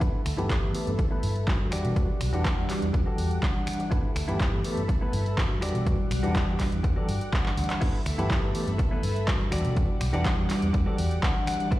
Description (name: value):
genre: filtered disco house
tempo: 123 BPM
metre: 4/4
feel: straight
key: unclear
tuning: A4 = 440 Hz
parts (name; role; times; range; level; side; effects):
- overdriven tine electric piano; accompaniment; 0.0-11.8 s; E3 to F#5; -32 LUFS; equal; fast tremolo, phaser, sidechain pumping, low-pass filter
- string machine, full ensemble; sustained chords; 0.0-11.8 s; G3 to D6; -36 LUFS; equal; ensemble chorus, sidechain pumping, low-pass filter
- direct-recorded clean electric guitar; riff; 0.0-11.8 s; E4 to F#5; -37 LUFS; left 1 dB; sidechain pumping, low-pass filter
- vintage muted fingered electric bass; bass; 0.0-11.8 s; B1 to B2; -29 LUFS; equal; sidechain pumping, low-pass filter
- electronic kick drum; drums; 0.0-11.8 s; none; -26 LUFS; equal; none
- punchy analog drum machine; drums; 0.0-11.8 s; crash cymbal, finger snaps, handclaps, hi-hat; -34 LUFS; equal; sidechain pumping on hats, sidechain pumping on cymbals
room: light reverb, digital ambience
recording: played on a big sound system in a bare room, stone room reverb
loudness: -24 LUFS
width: side -16 dB against mid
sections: 0.0-11.8 A section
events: filter sweep 0.0-11.8; drum fill 7.5-7.8; clean electric guitar fill 10.7-11.7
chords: 0.0 G69; 1.7 Em9; 3.9 G69; 5.6 Em9; 7.8 G69; 9.5 Em9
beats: | 0.01 0.50 0.99 1.48 | 1.96 2.45 2.94 3.43 | 3.92 4.40 4.89 5.38 | 5.87 6.35 6.84 7.33 | 7.82 8.30 8.79 9.28 | 9.77 10.26 10.74 11.23 | 11.72